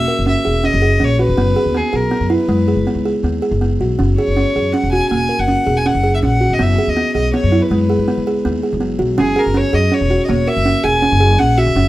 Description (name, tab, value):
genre	contemporary instrumental, chamber music in an uneven meter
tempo	162 BPM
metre	7/4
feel	straight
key	F# mixolydian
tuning	A4 = 441 Hz
part	rich violin	melody	0.0-11.9 s	G#4 to G#5	-19 LUFS	left 2 dB	none
part	upright bass	bass	0.0-11.9 s	E1 to F#2	-17 LUFS	equal	none
part	buzzing kalimba	arpeggios	0.1-11.9 s	G#3 to A#4	-16 LUFS	right 2 dB	none
room	little or no reverb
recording	close, detailed microphones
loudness	-13 LUFS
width	side -16 dB against mid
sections	0.0-11.9 A section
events	none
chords	0.0 F#9; 1.4 Emaj7/F# (rootless); 4.0 F#9; 6.6 Emaj7/F# (rootless); 9.2 F#9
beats	0.27 0.64 1.01 | 1.38 1.75 2.12 2.49 2.87 3.24 3.62 | 4.00 4.37 4.74 5.12 5.49 5.86 6.24 | 6.61 6.97 7.34 7.71 8.08 8.45 8.82 | 9.19 9.56 9.93 10.29 10.66 11.03 11.40 | 11.77